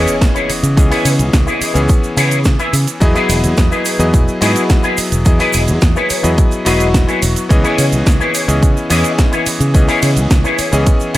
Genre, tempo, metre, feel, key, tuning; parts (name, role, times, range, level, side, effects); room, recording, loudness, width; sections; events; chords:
nu-disco, nu disco; 107 BPM; 4/4; straight; C# minor; A4 = 440 Hz
bright electric grand piano; accompaniment; 0.0-11.2 s; E3 to D#5; -17 LUFS; left 1 dB; dub echo
electric guitar with an envelope filter; riff; 0.0-11.2 s; E4 to E5; -18 LUFS; left 2 dB; ensemble chorus, dub echo
fingered electric bass; bass; 0.0-11.2 s; E1 to C#3; -15 LUFS; equal
sub drop; sound effects; 0.0-0.8 s; -32 LUFS; right 1 dB
house drum kit; drums; 0.1-11.2 s; hi-hat, ride cymbal, shaker, snare drum; -21 LUFS; right 2 dB
tube shaker; percussion; 0.1-11.2 s; -26 LUFS; right 4 dB
electronic kick drum; drums; 0.2-11.0 s; -12 LUFS; equal
digital ambience; -11 LUFS; side -15 dB against mid
0.0-11.2 A section
impact 0.0-0.8
0.0 C#m7; 3.0 Emaj7; 7.5 C#m7